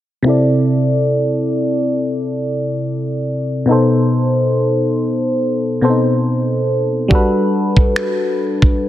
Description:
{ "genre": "contemporary R&B", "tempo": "70 BPM", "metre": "4/4", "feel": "swing 54% on 16ths", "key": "unclear", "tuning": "A4 = 440 Hz", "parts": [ { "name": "FM electric piano", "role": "accompaniment", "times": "0.2-8.9 s", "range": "B2 to D5", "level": "-14 LUFS", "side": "equal", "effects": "chorus, low-pass filter" }, { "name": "dusty soul sampler-style drum kit", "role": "drums", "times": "7.1-8.8 s", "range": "finger snaps, kick drum", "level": "-13 LUFS", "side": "right 1 dB", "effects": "soft clipping on snare" } ], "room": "light reverb, digital ambience", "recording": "dense, heavily limited modern master", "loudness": "-14 LUFS", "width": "side -13 dB against mid", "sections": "0.3-8.9 A section", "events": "filter sweep on FM electric piano 0.3-8.9", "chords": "0.3 C6; 3.7 B7b9; 7.1 Gmaj9" }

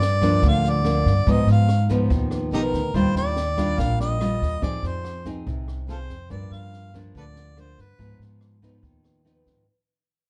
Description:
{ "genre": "bossa nova", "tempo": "143 BPM", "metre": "4/4", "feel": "straight", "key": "unclear", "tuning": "A4 = 439 Hz", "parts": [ { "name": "mellow harmonica", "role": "melody", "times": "0.0-8.2 s", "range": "Eb4 to F5", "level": "-29 LUFS", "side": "equal", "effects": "none" }, { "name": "nylon-string guitar", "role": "accompaniment", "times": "0.0-9.7 s", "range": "G2 to Ab4", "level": "-27 LUFS", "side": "equal", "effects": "none" }, { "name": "upright bass", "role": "bass", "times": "0.0-9.7 s", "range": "Bb1 to Ab2", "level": "-26 LUFS", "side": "equal", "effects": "none" }, { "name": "jazz brush drum kit", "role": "drums", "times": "0.0-9.5 s", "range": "kick drum, rim click, snare drum", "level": "-32 LUFS", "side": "equal", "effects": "none" } ], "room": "light reverb", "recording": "dark, warm production", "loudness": "-22 LUFS", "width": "mono", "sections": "0.0-9.7 A section", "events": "fade-out 0.0-9.7", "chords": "0.0 Gm7; 1.3 Abm6; 2.9 Ebmaj9; 4.6 Fm7; 6.3 Gm7; 8.0 Abm6" }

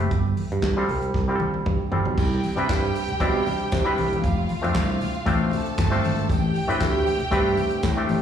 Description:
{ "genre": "disco", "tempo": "117 BPM", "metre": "4/4", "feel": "straight", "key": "C major", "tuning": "A4 = 440 Hz", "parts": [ { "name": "clav", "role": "accompaniment", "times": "0.0-8.2 s", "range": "G3 to D5", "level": "-26 LUFS", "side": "left 1 dB", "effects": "auto-wah, slapback echo" }, { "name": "picked electric bass", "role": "bass", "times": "0.0-8.2 s", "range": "E1 to C3", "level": "-24 LUFS", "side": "right 1 dB", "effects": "none" }, { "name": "warm soul drum kit", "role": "drums", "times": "0.0-8.2 s", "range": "crash cymbal, handclaps, hi-hat, kick drum, snare drum, toms", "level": "-28 LUFS", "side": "equal", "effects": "none" }, { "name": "congas", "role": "percussion", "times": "0.4-8.2 s", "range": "none", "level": "-32 LUFS", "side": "left 4 dB", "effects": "none" }, { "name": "rich studio violin section", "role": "second line", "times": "2.2-8.2 s", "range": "F4 to A5", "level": "-28 LUFS", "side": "right 2 dB", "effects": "slapback echo" }, { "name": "tambourine", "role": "percussion", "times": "2.2-8.2 s", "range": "none", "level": "-49 LUFS", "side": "right 4 dB", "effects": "none" } ], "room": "light reverb, studio reverb", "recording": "live gig heard through the venue's PA, recital hall reverb, small room ambience", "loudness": "-20 LUFS", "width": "side -8 dB against mid", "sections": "0.0-2.2 A section; 2.2-8.2 B section", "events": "drum fill 1.1-2.2", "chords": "0.1 G9sus4; 2.2 Cmaj9; 4.2 F6; 6.3 Am11" }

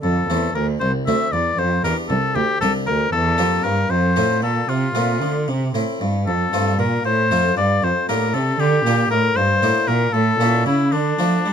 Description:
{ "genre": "classical, baroque-style sonata movement with continuo", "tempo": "77 BPM (dotted quarters)", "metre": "6/8", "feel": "straight", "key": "F major", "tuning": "A4 = 445 Hz", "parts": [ { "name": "clear oboe", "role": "melody", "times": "0.0-11.5 s", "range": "D4 to E5", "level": "-20 LUFS", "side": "left 4 dB", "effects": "none" }, { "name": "harpsichord", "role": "accompaniment", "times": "0.0-11.5 s", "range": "C2 to G4", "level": "-23 LUFS", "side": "left 1 dB", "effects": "none" }, { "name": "rich cello", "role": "bass", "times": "0.0-11.5 s", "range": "C2 to G3", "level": "-20 LUFS", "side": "right 2 dB", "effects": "none" } ], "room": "light reverb", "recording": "close, detailed microphones", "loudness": "-16 LUFS", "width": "side -8 dB against mid", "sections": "0.0-11.5 A section", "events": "none", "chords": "0.0 F; 1.6 G5; 3.1 C7/E; 3.9 F; 5.5 C; 6.3 F; 7.8 Gm7/F; 9.4 Em7b5/G; 10.1 A; 10.9 Dm" }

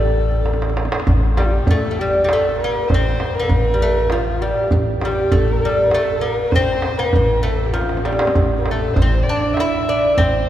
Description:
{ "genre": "Persian modal ensemble", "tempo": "99 BPM", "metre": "3/4", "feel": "straight", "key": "A dastgah shur", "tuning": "A4 = 440 Hz", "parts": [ { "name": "lute", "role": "melody", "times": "0.0-10.5 s", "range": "F3 to E4", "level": "-20 LUFS", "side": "equal", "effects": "none" }, { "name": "dark kamancheh", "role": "second line", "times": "0.0-10.5 s", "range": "F4 to E5", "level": "-23 LUFS", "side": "left 2 dB", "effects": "none" }, { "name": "upright bass", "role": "bass", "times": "0.0-10.4 s", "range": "A1", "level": "-21 LUFS", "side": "equal", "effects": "none" }, { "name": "tombak", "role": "percussion", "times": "0.2-10.3 s", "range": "none", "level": "-21 LUFS", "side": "right 1 dB", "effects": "none" } ], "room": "wet cathedral reverb, RT60 4.2 s", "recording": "recorded in a church or concert hall", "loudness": "-15 LUFS", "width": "side -12 dB against mid", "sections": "0.0-1.1 A section; 1.1-10.5 B section", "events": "drum fill 0.5-1.1, 7.7-8.4", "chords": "none" }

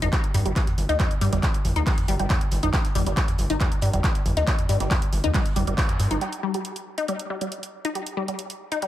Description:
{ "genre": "driving peak-time techno", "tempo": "138 BPM", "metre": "4/4", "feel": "straight", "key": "unclear", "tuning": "A4 = 438 Hz", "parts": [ { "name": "resonant blip pluck", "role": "riff", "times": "0.0-8.9 s", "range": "G3 to Eb4", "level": "-28 LUFS", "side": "left 2 dB", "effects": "phaser, tube saturation, sidechain pumping, dub echo" }, { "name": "gritty driven synth bass", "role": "bass", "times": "0.0-6.2 s", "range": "G1 to G2", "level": "-24 LUFS", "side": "equal", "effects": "sidechain pumping" }, { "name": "techno drum kit", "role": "drums", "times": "0.0-8.9 s", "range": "handclaps, hi-hat, toms", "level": "-28 LUFS", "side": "right 1 dB", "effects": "overdrive, sidechain pumping on hats, small room ambience, sidechain pumping on toms, analog delay" }, { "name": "warm soul drum kit", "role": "drums", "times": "0.0-6.1 s", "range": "hi-hat, snare drum", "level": "-44 LUFS", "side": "right 2 dB", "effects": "none" }, { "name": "electronic kick drum", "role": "drums", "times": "0.1-5.9 s", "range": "none", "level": "-24 LUFS", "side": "equal", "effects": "small room ambience" } ], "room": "light reverb, small room ambience", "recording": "echo-heavy mix", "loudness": "-21 LUFS", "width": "side -13 dB against mid", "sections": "0.0-6.2 A section; 6.2-8.9 B section", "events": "band accent 5.8", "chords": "none" }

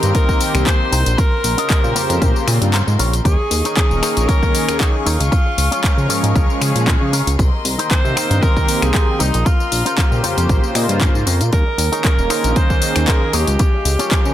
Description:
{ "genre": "nu-disco, nu disco", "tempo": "116 BPM", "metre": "4/4", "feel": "swing 54% on 16ths", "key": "Bb dorian", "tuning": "A4 = 440 Hz", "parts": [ { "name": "bright tenor saxophone", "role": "melody", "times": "0.0-14.3 s", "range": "Eb4 to C5", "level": "-23 LUFS", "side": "right 1 dB", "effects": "vintage 12-bit sampler grit, dub echo" }, { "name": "warm analog pad", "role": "accompaniment", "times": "0.0-14.3 s", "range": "Db3 to C5", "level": "-23 LUFS", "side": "equal", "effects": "chorus, tape echo" }, { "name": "rich chamber string section", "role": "sustained chords", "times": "0.0-14.3 s", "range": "Ab3 to Db6", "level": "-28 LUFS", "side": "left 3 dB", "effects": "sidechain pumping" }, { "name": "electric guitar with an envelope filter", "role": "riff", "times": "0.0-14.2 s", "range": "Db4 to F5", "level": "-26 LUFS", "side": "left 2 dB", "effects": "wide subtle chorus, tape echo" }, { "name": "chorused synth bass", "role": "bass", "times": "0.0-14.3 s", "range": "Eb1 to Db3", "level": "-18 LUFS", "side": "equal", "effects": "tube saturation" }, { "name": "house drum kit", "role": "drums", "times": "0.0-14.3 s", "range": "finger snaps, handclaps, hi-hat, tambourine", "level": "-22 LUFS", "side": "left 2 dB", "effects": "overdrive" }, { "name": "electronic kick drum", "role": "drums", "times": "0.1-14.2 s", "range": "none", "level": "-16 LUFS", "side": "equal", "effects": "overdrive" } ], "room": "digital ambience", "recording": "dense, heavily limited modern master", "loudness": "-14 LUFS", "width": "side -12 dB against mid", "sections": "0.0-14.3 A section", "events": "kick drops out 2.7-3.3; clean electric guitar fill 10.5-11.5", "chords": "0.0 Cm7; 1.2 Bbmadd9; 3.3 Eb7sus4; 5.3 Db; 7.4 Cm7; 9.5 Bbmadd9; 11.5 Eb7sus4; 13.6 Db" }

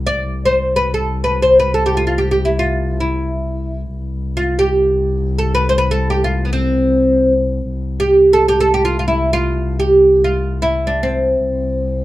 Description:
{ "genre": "Arabic maqam ensemble", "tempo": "free time", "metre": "none", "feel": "none", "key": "C maqam ajam", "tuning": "A4 = 441 Hz", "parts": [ { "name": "dark double bass", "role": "drone", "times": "0.0-12.0 s", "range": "C2", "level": "-20 LUFS", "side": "left 1 dB", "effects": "none" }, { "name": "oud", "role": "melody", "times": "0.1-12.0 s", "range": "B3 to D5", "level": "-14 LUFS", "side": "equal", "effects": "none" } ], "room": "light reverb", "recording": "dark, warm production", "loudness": "-13 LUFS", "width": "side -16 dB against mid", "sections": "0.0-7.7 A section; 7.7-12.0 A section", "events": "none", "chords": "none" }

